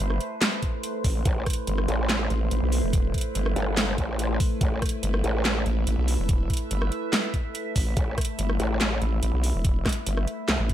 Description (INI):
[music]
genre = heavy wobble dubstep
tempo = 143 BPM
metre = 4/4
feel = half-time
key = A minor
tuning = A4 = 440 Hz
[part]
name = evolving wavetable pad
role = sustained chords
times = 0.0-10.7 s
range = A3 to E5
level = -31 LUFS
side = right 1 dB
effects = phaser, built-in reverb, sidechain pumping
[part]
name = vowel-sweep wobble bass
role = bass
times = 0.0-10.7 s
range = E1 to B1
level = -25 LUFS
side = equal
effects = chorus, overdrive
[part]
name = dubstep drum kit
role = drums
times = 0.0-10.7 s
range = handclaps, hi-hat, rim click, snare drum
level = -28 LUFS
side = right 1 dB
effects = studio reverb
[part]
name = electronic kick drum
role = drums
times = 0.6-10.7 s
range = none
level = -25 LUFS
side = equal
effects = studio reverb
[part]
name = growl bass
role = bass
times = 1.3-10.6 s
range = G1 to C2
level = -26 LUFS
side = equal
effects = chorus, overdrive
[sound]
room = digital ambience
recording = none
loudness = -23 LUFS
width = side -11 dB against mid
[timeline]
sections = 0.0-10.7 A section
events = none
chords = 0.0 Amadd9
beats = 0.00 0.41 0.83 | 1.25 1.67 2.09 2.51 | 2.93 3.35 3.77 4.19 | 4.61 5.03 5.45 5.87 | 6.29 6.71 7.13 7.55 | 7.97 8.39 8.81 9.23 | 9.65 10.06 10.48